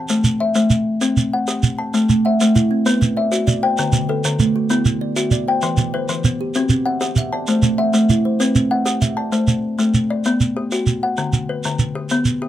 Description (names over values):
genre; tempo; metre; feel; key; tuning
southern african traditional, mbira-style interlocking cycle; 130 BPM (dotted quarters); 12/8; straight; A dorian; A4 = 441 Hz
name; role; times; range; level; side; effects
kalimba; arpeggios; 0.0-12.5 s; D3 to A5; -18 LUFS; left 2 dB; none
shekere; percussion; 0.1-12.4 s; none; -19 LUFS; right 3 dB; none
kalimba; arpeggios; 2.1-9.6 s; D3 to F#5; -23 LUFS; right 5 dB; none
room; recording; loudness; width
light reverb; close, detailed microphones; -16 LUFS; side -12 dB against mid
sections
0.0-9.3 A section; 9.3-12.5 A section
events
none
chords
0.1 A5; 1.0 C5; 1.9 Am; 2.9 Bm; 3.8 D; 4.7 Bm; 5.6 Em; 6.6 C; 7.5 Am; 8.4 C; 9.3 Am; 10.3 Bm; 11.2 D